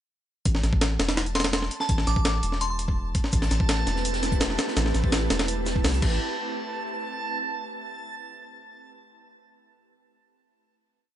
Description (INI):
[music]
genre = drum and bass, jungle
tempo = 167 BPM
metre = 4/4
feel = straight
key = A minor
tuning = A4 = 440 Hz
[part]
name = soft dub sub bass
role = bass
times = 0.5-6.2 s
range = E1 to C2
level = -27 LUFS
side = equal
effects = none
[part]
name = breakbeat sampler-style drum kit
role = drums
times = 0.5-6.1 s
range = crash cymbal, hi-hat, kick drum, snare drum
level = -25 LUFS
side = equal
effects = none
[part]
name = backwards swelling texture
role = texture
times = 0.7-6.2 s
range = A5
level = -34 LUFS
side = right 2 dB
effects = built-in reverb
[part]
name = glassy synth bell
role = melody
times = 1.4-2.8 s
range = A5 to D6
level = -31 LUFS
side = equal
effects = chorus, dub echo
[part]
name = ethereal airy pad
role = sustained chords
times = 3.5-6.2 s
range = A3 to B4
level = -32 LUFS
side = right 2 dB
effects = ensemble chorus, built-in reverb
[part]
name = natural country drum kit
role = drums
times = 3.3-6.0 s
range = hi-hat, shaker, snare drum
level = -36 LUFS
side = left 1 dB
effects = high-pass filter on hats, high-pass filter on snare, high-pass filter on perc, high-pass filter on room
[sound]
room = light reverb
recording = nothing above 10.5 kHz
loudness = -23 LUFS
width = side -11 dB against mid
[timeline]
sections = 0.5-6.2 drop; 6.2-7.6 final hit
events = drop 0.5-6.2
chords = 0.5 Am7; 6.2 N.C.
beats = | 0.46 0.81 1.17 1.53 | 1.89 2.25 2.61 2.97 | 3.33 3.69 4.05 4.41 | 4.77 5.13 5.49 5.84 | 6.20